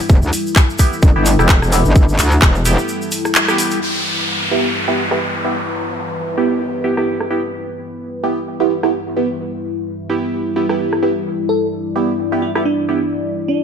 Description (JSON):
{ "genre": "bass house", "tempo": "129 BPM", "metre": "4/4", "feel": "swing 57% on 16ths", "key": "E minor", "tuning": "A4 = 441 Hz", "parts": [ { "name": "dark analog pad", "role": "sustained chords", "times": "0.0-13.6 s", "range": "G3 to D5", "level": "-23 LUFS", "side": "left 3 dB", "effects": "chorus, phaser, sidechain pumping" }, { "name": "garage drum kit", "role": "drums", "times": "0.0-12.6 s", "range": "handclaps, hi-hat, rim click", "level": "-18 LUFS", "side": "equal", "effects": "low-pass filter on snare, small room ambience, low-pass filter on hats" }, { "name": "tube shaker", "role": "percussion", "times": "0.0-3.8 s", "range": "none", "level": "-26 LUFS", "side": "left 1 dB", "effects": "none" }, { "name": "metallic wobble bass", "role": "bass", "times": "0.1-2.8 s", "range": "E1 to D2", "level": "-14 LUFS", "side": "equal", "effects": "distortion, chorus, tube saturation, sidechain pumping" }, { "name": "electronic kick drum", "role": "drums", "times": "0.1-2.5 s", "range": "none", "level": "-11 LUFS", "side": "equal", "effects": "small room ambience" }, { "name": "band-passed chord stab", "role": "stabs", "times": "0.8-13.0 s", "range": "B3 to G4", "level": "-19 LUFS", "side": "right 3 dB", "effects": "phaser, lush chorus, sidechain pumping, dub echo" }, { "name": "downlifter", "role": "sound effects", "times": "3.8-7.5 s", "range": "none", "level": "-22 LUFS", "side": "equal", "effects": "none" }, { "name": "bell-like FM electric piano", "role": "melody", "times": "11.5-13.6 s", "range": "D4 to A4", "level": "-20 LUFS", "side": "right 1 dB", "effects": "chorus, tremolo, dub echo" } ], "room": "light reverb", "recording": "none", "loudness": "-14 LUFS", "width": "side -7 dB against mid", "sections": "0.0-3.8 A section; 3.8-13.6 B section", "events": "drop 0.0-3.8; break 2.9-3.8; band accent 3.4", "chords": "0.0 Em" }